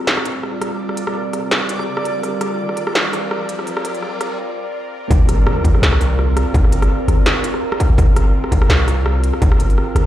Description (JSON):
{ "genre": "half-time drum and bass", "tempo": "167 BPM", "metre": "4/4", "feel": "swing 55% on 16ths, half-time", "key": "G minor", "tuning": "A4 = 440 Hz", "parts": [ { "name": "bowed-like drone", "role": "sustained chords", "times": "0.0-10.1 s", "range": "G3 to D5", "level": "-24 LUFS", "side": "right 1 dB", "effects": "built-in reverb, sidechain pumping" }, { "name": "riser and impact", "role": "sound effects", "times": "1.4-6.5 s", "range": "none", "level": "-29 LUFS", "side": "equal", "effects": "none" }, { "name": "backwards swelling texture", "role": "texture", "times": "0.1-4.4 s", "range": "D5", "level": "-29 LUFS", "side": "right 3 dB", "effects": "built-in reverb" }, { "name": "industrial drum kit", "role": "drums", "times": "0.1-10.0 s", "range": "hi-hat, rim click, snare drum", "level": "-21 LUFS", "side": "equal", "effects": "none" }, { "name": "long sustained 808-style bass", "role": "bass", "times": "5.1-10.1 s", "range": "G1 to C2", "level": "-15 LUFS", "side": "equal", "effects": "none" }, { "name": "electronic kick drum", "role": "drums", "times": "5.1-9.5 s", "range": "none", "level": "-15 LUFS", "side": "equal", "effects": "distortion" } ], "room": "digital ambience", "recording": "played on a big sound system in a bare room, large studio reverb, high-pass filter", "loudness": "-15 LUFS", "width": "side -13 dB against mid", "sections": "0.0-5.1 A section; 5.1-10.1 B section", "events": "build-up 0.0-5.1; riser 1.4-4.4; filter sweep on synth drone 0.0-5.1; filter sweep 0.0-5.1; break 4.4-5.1; drop 5.1-10.1; impact 5.1-6.5", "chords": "0.0 Gm7" }